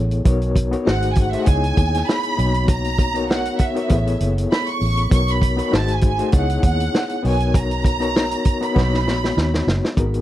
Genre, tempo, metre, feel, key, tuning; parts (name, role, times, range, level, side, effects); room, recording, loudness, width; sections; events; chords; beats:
lush 1970s-style soul; 99 BPM; 4/4; swing 54% on 16ths; B major; A4 = 441 Hz
overdriven reed electric piano; accompaniment; 0.0-10.2 s; A3 to C#5; -23 LUFS; left 4 dB; fast tremolo
vintage muted fingered electric bass; bass; 0.0-10.2 s; F#1 to D#2; -21 LUFS; equal
vintage drum kit; drums; 0.1-10.2 s; hi-hat, kick drum, snare drum; -19 LUFS; equal
rich studio violin section; melody; 0.9-9.7 s; E5 to C#6; -24 LUFS; right 4 dB; tape echo
small room ambience; dry, close 1970s-style studio recording; -16 LUFS; side -13 dB against mid
0.0-10.0 A section
drum fill 8.8-10.0
0.3 Bmaj9; 0.9 G#7b9; 1.5 C#m9; 2.4 Bmaj9; 3.9 Amaj9; 5.1 Bmaj9; 5.7 G#7b9; 6.3 C#m9; 7.2 Bmaj9
| 0.26 0.86 1.47 2.08 | 2.69 3.29 3.90 4.51 | 5.11 5.72 6.33 6.94 | 7.54 8.15 8.76 9.37 | 9.97